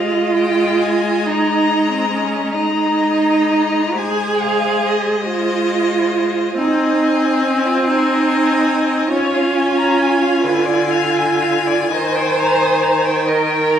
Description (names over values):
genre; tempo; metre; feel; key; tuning
classical, slow romantic movement for string quartet; 39-48 BPM (dotted quarters); 6/8; rubato; Ab major; A4 = 440 Hz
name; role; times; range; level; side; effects
clear violin; melody; 0.0-13.8 s; Eb5 to Bb5; -23 LUFS; left 7 dB; none
rich violin; second line; 0.0-13.8 s; B4 to Eb6; -23 LUFS; left 4 dB; none
clear viola; accompaniment; 0.0-13.8 s; D3 to Db4; -20 LUFS; left 1 dB; none
warm cello; bass; 0.0-13.8 s; C4 to C5; -17 LUFS; right 4 dB; none
room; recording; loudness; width
wet recital hall reverb, RT60 1.6 s; small room ambience; -14 LUFS; side -9 dB against mid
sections
0.0-13.8 A section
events
none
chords
0.0 Ab5; 1.2 Eb5/Ab; 4.0 Ab; 6.6 Ab/C; 9.1 Bbm7/Db (rootless); 10.4 Ddim; 11.9 Eb